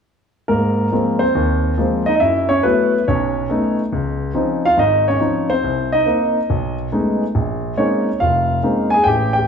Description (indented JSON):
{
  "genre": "solo jazz",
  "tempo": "140 BPM",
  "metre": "4/4",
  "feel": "swing 67% on 8ths",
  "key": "Ab major",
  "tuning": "A4 = 440 Hz",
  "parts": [
    { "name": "warm grand piano", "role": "solo", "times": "0.5-9.5 s", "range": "F1 to Ab5", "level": "-15 LUFS", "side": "equal", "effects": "none" }
  ],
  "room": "wet stone room reverb, RT60 1.3 s",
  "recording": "band playing live in one room",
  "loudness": "-15 LUFS",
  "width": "side -6 dB against mid",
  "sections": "0.5-9.5 A section",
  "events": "none",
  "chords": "0.5 Ab69; 2.2 Gbm7; 3.1 B9; 3.9 Dbmaj9; 5.6 Cm7; 6.5 B13; 7.3 Bbm11",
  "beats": "| 0.49 0.92 1.35 1.78 | 2.21 2.64 3.06 3.49 | 3.92 4.35 4.78 5.21 | 5.64 6.07 6.49 6.92 | 7.35 7.78 8.21 8.63 | 9.06"
}